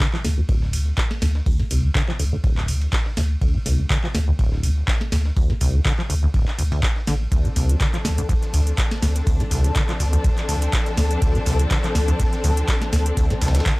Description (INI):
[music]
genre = acid house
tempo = 123 BPM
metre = 4/4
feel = swing 54% on 16ths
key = D minor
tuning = A4 = 438 Hz
[part]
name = deep acid bass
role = riff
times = 0.0-13.7 s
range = D1 to F3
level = -23 LUFS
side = equal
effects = overdrive, wide subtle chorus, cassette tape, sidechain pumping, analog delay
[part]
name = booming analog drum machine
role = drums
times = 0.0-13.8 s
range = handclaps, hi-hat, shaker, snare drum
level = -27 LUFS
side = equal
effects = overdrive
[part]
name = breakbeat sampler-style drum kit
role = drums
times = 0.0-13.8 s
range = hi-hat, ride cymbal, snare drum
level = -37 LUFS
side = right 1 dB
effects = high-pass filter on snare, sidechain pumping on cymbals, high-pass filter on cymbals, sidechain pumping on hats, high-pass filter on hats
[part]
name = electronic kick drum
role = drums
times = 0.0-13.8 s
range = none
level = -21 LUFS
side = equal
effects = overdrive
[part]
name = saturated sub bass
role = bass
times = 0.2-13.6 s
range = A1 to D2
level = -21 LUFS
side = equal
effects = tube saturation, sidechain pumping
[part]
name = dark symphonic string section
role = sustained chords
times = 7.3-13.8 s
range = F3 to A4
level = -27 LUFS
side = left 2 dB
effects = sidechain pumping
[sound]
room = little or no reverb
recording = dry, gritty hardware recording, lossy compression artefacts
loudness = -18 LUFS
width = side -22 dB against mid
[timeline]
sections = 0.0-13.8 A section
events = none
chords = 0.0 Dm7